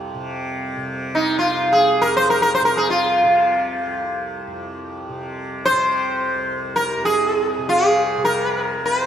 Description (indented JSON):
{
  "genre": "indian classical, Hindustani",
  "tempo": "free time",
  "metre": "none",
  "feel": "none",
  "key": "unclear",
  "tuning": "A4 = 438 Hz",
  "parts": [
    { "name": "sitar", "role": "melody", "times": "0.0-9.1 s", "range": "Eb4 to C5", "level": "-17 LUFS", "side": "equal", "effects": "none" },
    { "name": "tanpura", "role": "drone", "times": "0.0-9.1 s", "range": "C2 to C3", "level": "-27 LUFS", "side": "equal", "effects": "none" }
  ],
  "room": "wet lush hall reverb, RT60 2.7 s",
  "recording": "rough home demo mix",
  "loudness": "-17 LUFS",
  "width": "side -9 dB against mid",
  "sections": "0.0-9.1 A section",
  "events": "none",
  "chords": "none"
}